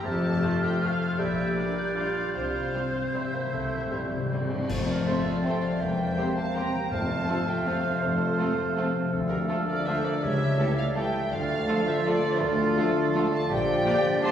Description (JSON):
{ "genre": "classical, orchestral ballroom waltz", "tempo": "143-176 BPM", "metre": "3/4", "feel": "rubato", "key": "F major", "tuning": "A4 = 440 Hz", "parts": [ { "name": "muted symphonic violin section", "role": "melody", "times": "0.0-14.3 s", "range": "A4 to C6", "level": "-35 LUFS", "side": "left 1 dB", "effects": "none" }, { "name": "bright clarinet", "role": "second line", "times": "0.0-14.3 s", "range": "F4 to D5", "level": "-36 LUFS", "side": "equal", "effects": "none" }, { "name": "hollow concert flute", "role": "second line", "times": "0.0-14.3 s", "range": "F4 to G6", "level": "-33 LUFS", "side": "equal", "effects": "none" }, { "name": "warm oboe", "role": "second line", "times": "0.0-14.3 s", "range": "D4 to A5", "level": "-35 LUFS", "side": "right 3 dB", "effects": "none" }, { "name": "muted symphonic viola section", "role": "accompaniment", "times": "0.0-14.3 s", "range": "A3 to D5", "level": "-38 LUFS", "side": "equal", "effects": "none" }, { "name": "warm bassoon", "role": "accompaniment", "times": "0.0-14.3 s", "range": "F3 to D4", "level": "-34 LUFS", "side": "right 2 dB", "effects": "none" }, { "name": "concert harp", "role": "arpeggios", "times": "0.0-14.3 s", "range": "E2 to A5", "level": "-31 LUFS", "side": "left 3 dB", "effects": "none" }, { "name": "muted symphonic cello section", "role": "bass", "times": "0.0-13.8 s", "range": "C#2 to C3", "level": "-35 LUFS", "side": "equal", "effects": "none" }, { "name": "muted symphonic double bass section", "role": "bass", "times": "0.0-13.8 s", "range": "E1 to D2", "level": "-35 LUFS", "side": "right 1 dB", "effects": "none" }, { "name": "muted symphonic violin section", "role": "second line", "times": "0.4-14.3 s", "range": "G3 to C5", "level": "-41 LUFS", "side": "left 1 dB", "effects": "none" }, { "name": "dark French horn section", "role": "sustained chords", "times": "0.4-14.3 s", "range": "G3 to A4", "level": "-37 LUFS", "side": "left 1 dB", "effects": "none" }, { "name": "timpani", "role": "percussion", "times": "2.3-4.6, 6.9-7.4 s", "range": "F2 to C3", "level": "-35 LUFS", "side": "left 2 dB", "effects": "none" }, { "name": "cymbal swell, clash cymbals and concert bass drum", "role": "percussion", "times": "2.4-5.4 s", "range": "none", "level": "-40 LUFS", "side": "left 1 dB", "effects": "none" }, { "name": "clear trombone section", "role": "sustained chords", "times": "5.1-14.3 s", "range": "Bb2 to Bb3", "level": "-36 LUFS", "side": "right 2 dB", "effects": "none" }, { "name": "mellow trumpet", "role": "stabs", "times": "5.1-14.3 s", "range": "A4 to D5", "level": "-37 LUFS", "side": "right 1 dB", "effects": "none" } ], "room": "wet concert hall reverb, RT60 2.4 s", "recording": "recorded in a church or concert hall, studio reverb", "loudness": "-24 LUFS", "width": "side -9 dB against mid", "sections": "0.0-4.7 A section; 4.7-14.3 B section", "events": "timpani fill 2.3-4.7; band accent 4.7-5.1", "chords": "0.0 F; 1.2 Gm/Bb; 2.3 C; 4.7 F; 5.8 C7/E; 6.9 F; 9.1 Dm7; 10.2 A7/C#; 11.3 Dm; 13.5 Gm7/Bb", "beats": "| 0.05 0.42 0.82 | 1.19 1.56 1.96 | 2.34 2.74 3.15 | 3.53 3.92 4.32 | 4.69 5.07 5.45 | 5.81 6.17 6.55 | 6.91 7.28 7.66 | 8.02 8.38 8.77 | 9.12 9.49 9.87 | 10.22 10.58 10.96 | 11.31 11.68 12.05 | 12.41 12.77 13.15 | 13.50 13.86 14.23" }